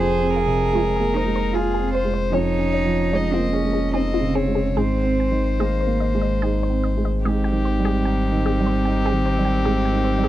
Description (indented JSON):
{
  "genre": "neoclassical piano and strings",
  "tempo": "74 BPM",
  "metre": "3/4",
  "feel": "uneven beats, rubato",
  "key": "unclear",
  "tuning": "A4 = 440 Hz",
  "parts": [
    { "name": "warm violin", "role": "melody", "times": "0.0-10.3 s", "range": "G4 to Eb5", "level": "-26 LUFS", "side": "left 5 dB", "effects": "none" },
    { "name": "rich cello", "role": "second line", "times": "0.0-10.3 s", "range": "Eb3 to Ab4", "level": "-26 LUFS", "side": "right 3 dB", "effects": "none" },
    { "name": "felt-muted upright piano", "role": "accompaniment", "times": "0.0-10.3 s", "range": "F2 to F4", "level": "-23 LUFS", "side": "right 4 dB", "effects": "none" },
    { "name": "resonant blip pluck", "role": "arpeggios", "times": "0.0-10.3 s", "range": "Db4 to Ab5", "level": "-29 LUFS", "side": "left 1 dB", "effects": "phaser" },
    { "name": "pure sine sub bass", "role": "bass", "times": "0.0-10.3 s", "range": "F1 to Ab1", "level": "-24 LUFS", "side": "left 1 dB", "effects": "none" },
    { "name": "dark viola", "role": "accompaniment", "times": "7.3-10.3 s", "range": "C4", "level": "-27 LUFS", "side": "right 1 dB", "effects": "none" }
  ],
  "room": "little or no reverb",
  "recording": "dry, close 1970s-style studio recording",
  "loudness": "-18 LUFS",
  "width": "side -14 dB against mid",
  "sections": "0.0-7.2 A section; 7.2-10.3 B section",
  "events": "none",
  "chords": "0.0 Fm; 2.3 Dbadd9/F; 4.8 Abadd9; 7.2 Abmaj7",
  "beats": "0.73 1.52 | 2.32 3.12 3.93 | 4.76 5.59 6.42 | 7.25 8.05 8.85 | 9.64"
}